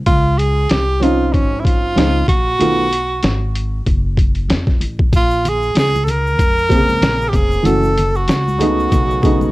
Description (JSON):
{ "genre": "hip hop, jazz-hop", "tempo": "95 BPM", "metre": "4/4", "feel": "swing 58% on 16ths", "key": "unclear", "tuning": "A4 = 440 Hz", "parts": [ { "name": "upright bass", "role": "bass", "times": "0.0-9.5 s", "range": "F1 to E#2", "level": "-19 LUFS", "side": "equal", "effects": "none" }, { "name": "edgy tenor saxophone", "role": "melody", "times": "0.1-9.5 s", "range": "Db4 to Bb4", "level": "-18 LUFS", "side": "right 1 dB", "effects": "none" }, { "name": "boom bap sampler-style drum kit", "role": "drums", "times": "0.1-9.4 s", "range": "hi-hat, kick drum, snare drum", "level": "-16 LUFS", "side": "equal", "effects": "vintage 12-bit sampler grit" }, { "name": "dark upright piano", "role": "accompaniment", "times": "1.0-2.8, 6.7-9.5 s", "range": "C3 to Ab4", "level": "-17 LUFS", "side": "right 1 dB", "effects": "none" }, { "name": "tube shaker and congas", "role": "percussion", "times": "5.1-9.5 s", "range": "none", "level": "-28 LUFS", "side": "left 2 dB", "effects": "none" } ], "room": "light reverb", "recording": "worn, warbling old tape, cassette tape, warbly pitch drift", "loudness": "-13 LUFS", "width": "side -19 dB against mid", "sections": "0.0-9.5 A section", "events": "none", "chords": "0.1 Dbmaj9; 2.6 B7(no3); 5.1 Bbm9; 7.6 Gbm7; 8.9 B9", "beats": "| 0.07 0.70 1.33 1.96 | 2.60 3.23 3.86 4.49 | 5.12 5.75 6.38 7.02 | 7.65 8.28 8.91" }